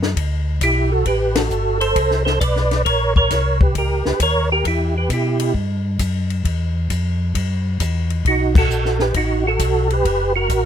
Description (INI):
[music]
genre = soul jazz organ trio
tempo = 133 BPM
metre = 4/4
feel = swing 67% on 8ths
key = E minor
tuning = A4 = 443 Hz
[part]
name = mellow tonewheel organ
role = bass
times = 0.0-10.7 s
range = F#1 to B2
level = -20 LUFS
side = left 1 dB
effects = chorus vibrato, slow rotary speaker
[part]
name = compact cocktail drum kit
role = drums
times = 0.0-10.6 s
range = crash cymbal, hi-hat, kick drum, ride cymbal, snare drum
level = -22 LUFS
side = left 2 dB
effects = none
[part]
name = percussive tonewheel organ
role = melody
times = 0.6-5.5, 8.3-10.7 s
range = D#4 to D5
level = -18 LUFS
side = right 3 dB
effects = slow rotary speaker, chorus vibrato
[sound]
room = little or no reverb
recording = close, detailed microphones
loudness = -16 LUFS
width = side -9 dB against mid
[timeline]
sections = 0.0-10.7 A section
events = band accent 1.3, 8.5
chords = 0.0 Esus2; 1.1 Am9; 2.9 A#m69; 4.7 Emadd9; 8.2 B7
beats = 0.16 0.60 | 1.05 1.50 1.95 2.40 | 2.85 3.30 3.75 4.20 | 4.65 5.10 5.55 6.00 | 6.45 6.90 7.35 7.80 | 8.25 8.70 9.15 9.60 | 10.05 10.50